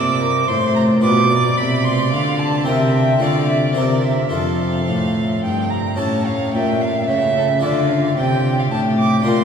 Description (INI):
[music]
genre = classical, baroque-style sonata movement with continuo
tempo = 110 BPM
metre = 3/4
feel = straight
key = unclear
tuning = A4 = 440 Hz
[part]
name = warm violin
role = melody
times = 0.0-9.4 s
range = F4 to E5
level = -24 LUFS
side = left 4 dB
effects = none
[part]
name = rich violin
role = second line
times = 0.0-9.4 s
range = D5 to D6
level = -21 LUFS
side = right 4 dB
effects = none
[part]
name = harpsichord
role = accompaniment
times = 0.0-9.4 s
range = F2 to Bb4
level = -23 LUFS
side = left 1 dB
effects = none
[part]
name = rich cello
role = bass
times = 0.0-9.4 s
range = F2 to D3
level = -18 LUFS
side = equal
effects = none
[sound]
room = wet cathedral reverb, RT60 5.5 s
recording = heard from further back in the room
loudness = -15 LUFS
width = side -7 dB against mid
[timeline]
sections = 0.0-6.0 A section; 6.0-9.4 A section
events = none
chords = 0.0 Gm; 1.0 G7/B; 2.7 C7; 3.2 Dm; 3.8 C7; 4.3 F; 6.0 A7; 7.6 Dm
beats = 0.50 | 1.04 1.59 2.13 | 2.68 3.23 3.77 | 4.33 4.89 5.45 | 6.00 6.55 7.09 | 7.64 8.18 8.72 | 9.26